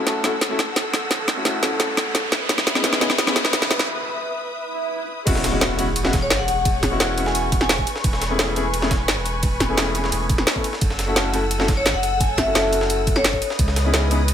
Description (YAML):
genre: liquid drum and bass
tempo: 173 BPM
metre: 4/4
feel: straight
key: unclear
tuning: A4 = 439 Hz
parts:
  - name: clear concert grand piano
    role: accompaniment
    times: 0.0-14.2 s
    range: G#3 to A4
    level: -25 LUFS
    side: left 2 dB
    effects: tape echo
  - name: rich studio string section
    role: sustained chords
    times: 0.0-14.3 s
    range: G#4 to E6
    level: -29 LUFS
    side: left 2 dB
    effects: sidechain pumping, low-pass filter
  - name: warm sub bass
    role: bass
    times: 0.0-14.3 s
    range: E1 to E2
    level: -25 LUFS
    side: right 1 dB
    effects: high-pass filter
  - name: riser, swell and impact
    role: sound effects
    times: 0.0-6.7 s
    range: none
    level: -28 LUFS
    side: right 1 dB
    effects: none
  - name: drum and bass drum kit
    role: drums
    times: 0.1-14.3 s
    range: crash cymbal, hi-hat, snare drum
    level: -22 LUFS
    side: equal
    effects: overdrive, small room ambience
  - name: breakbeat sampler-style drum kit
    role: drums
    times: 5.3-14.3 s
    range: hi-hat, ride cymbal, snare drum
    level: -28 LUFS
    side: right 2 dB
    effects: high-pass filter on cymbals, small room ambience, high-pass filter on snare, high-pass filter on hats
  - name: electronic kick drum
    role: drums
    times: 5.3-13.7 s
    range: none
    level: -22 LUFS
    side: right 1 dB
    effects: small room ambience
  - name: vibraphone with hard mallets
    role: melody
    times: 6.2-7.8, 11.8-13.5 s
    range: C#5 to G#5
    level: -25 LUFS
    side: left 2 dB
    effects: ping-pong delay
room: light reverb, digital ambience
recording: none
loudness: -18 LUFS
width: side -9 dB against mid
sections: 0.0-5.3 A section; 5.3-14.3 B section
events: build-up 0.0-5.3; drum fill 0.0-3.9; riser 0.0-3.9; break 3.9-5.3; swell 4.7-5.3; drop 5.3-14.3; impact 5.3-6.7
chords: 0.0 F#m7; 2.3 C#m9; 5.3 E69; 7.9 Amaj9/E; 10.8 F#m7; 13.4 C#m9